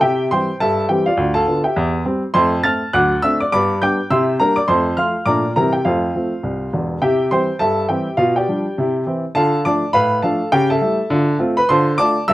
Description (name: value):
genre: jazz, stride piano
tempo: 206 BPM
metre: 4/4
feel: swing 60% on 8ths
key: F major, C major from 7.0 s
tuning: A4 = 438 Hz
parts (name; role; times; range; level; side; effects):
- clear upright piano; solo; 0.0-12.3 s; E1 to A6; -15 LUFS; equal; none
room: light reverb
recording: close, detailed microphones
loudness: -15 LUFS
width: side -16 dB against mid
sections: 0.0-7.0 A section; 7.0-12.3 B section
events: none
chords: 0.0 C; 1.2 Bdim/D; 1.8 C/E; 2.4 F; 2.9 D7; 3.5 G; 4.1 C9; 4.7 F; 5.3 Bbmaj7; 5.6 C7; 5.9 F; 7.0 C; 8.2 G7/B; 8.8 C; 9.4 Dm; 10.5 A7/C#; 11.1 Dm7